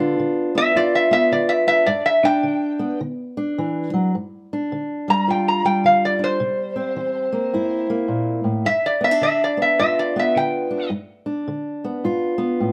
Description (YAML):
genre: acoustic country blues, solo or duo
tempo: 106 BPM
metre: 4/4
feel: swing 62% on 8ths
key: G mixolydian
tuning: A4 = 440 Hz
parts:
  - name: fingerpicked steel-string acoustic guitar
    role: accompaniment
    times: 0.0-12.7 s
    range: G2 to F4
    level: -24 LUFS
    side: equal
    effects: none
  - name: metal-body resonator slide guitar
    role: melody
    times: 0.6-10.9 s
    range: C5 to Bb5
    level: -20 LUFS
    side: equal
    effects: none
room: moderate studio reverb, RT60 0.8 s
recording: none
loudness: -20 LUFS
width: mono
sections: 0.0-4.1 A section; 4.1-12.7 B section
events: resonator guitar played with a steel bar solo 0.0-4.1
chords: 0.0 G7; 3.0 D; 4.1 G5; 6.4 C7; 8.6 G7